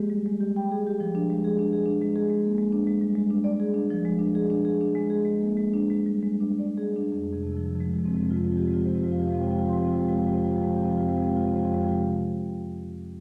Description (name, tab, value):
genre	classical, contemporary piece for solo marimba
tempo	83-105 BPM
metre	5/4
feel	rubato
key	F dorian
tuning	A4 = 440 Hz
part	marimba with medium mallets	solo	0.0-12.0 s	F2 to C6	-26 LUFS	equal	none
room	wet recital hall reverb, RT60 1.8 s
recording	none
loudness	-26 LUFS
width	mono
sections	0.0-1.0 A section; 1.0-7.1 B section; 7.1-10.5 C section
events	slowing down 1.0-7.1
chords	0.0 Fmadd9; 1.0 Fm6; 7.1 Fmadd9